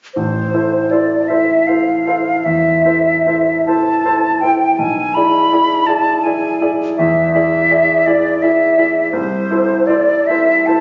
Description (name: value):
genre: classical, romantic duo for flute and grand piano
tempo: 48-57 BPM (dotted quarters)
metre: 12/8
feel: rubato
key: A minor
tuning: A4 = 440 Hz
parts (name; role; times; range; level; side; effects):
- hollow concert flute; melody; 0.1-10.8 s; C5 to B5; -17 LUFS; equal; none
- clear grand piano; accompaniment; 0.2-10.8 s; A1 to D5; -18 LUFS; equal; none
room: moderate recital hall reverb, RT60 1.5 s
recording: recorded on a phone in the room, club reverb, nothing above 7.5 kHz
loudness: -14 LUFS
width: mono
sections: 0.2-10.8 A section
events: none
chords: 0.2 Am; 4.8 E7/B; 9.1 Am/C